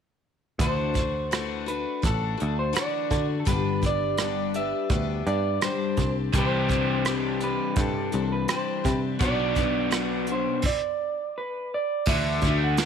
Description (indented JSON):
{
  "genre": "folk rock and heartland rock",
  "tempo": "84 BPM",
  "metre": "4/4",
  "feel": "straight",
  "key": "D mixolydian",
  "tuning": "A4 = 442 Hz",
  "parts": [
    { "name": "electric guitar through a small old amp", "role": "melody", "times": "0.6-12.9 s", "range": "A4 to F#5", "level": "-29 LUFS", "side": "right 3 dB", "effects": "none" },
    { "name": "picked twelve-string acoustic guitar", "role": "accompaniment", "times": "0.6-12.9 s", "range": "G2 to G4", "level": "-31 LUFS", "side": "left 12 dB", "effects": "none" },
    { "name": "picked electric bass", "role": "bass", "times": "0.6-12.9 s", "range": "G1 to D3", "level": "-29 LUFS", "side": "equal", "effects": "none" },
    { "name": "soft brush drum kit", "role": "drums", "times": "0.6-12.9 s", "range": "crash cymbal, hi-hat, kick drum, rim click, snare drum", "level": "-28 LUFS", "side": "right 2 dB", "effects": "none" },
    { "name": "crunchy overdriven guitar", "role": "riff", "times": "6.3-12.9 s", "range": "B2 to G4", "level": "-28 LUFS", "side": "left 2 dB", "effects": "none" }
  ],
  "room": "light reverb",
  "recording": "1960s-style stereo",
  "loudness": "-23 LUFS",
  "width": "side -7 dB against mid",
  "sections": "0.6-12.1 A section",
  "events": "stop 10.7-12.1",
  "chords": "0.6 Dadd9; 3.5 G; 6.0 Cadd9; 9.2 Bm; 12.1 Dadd9"
}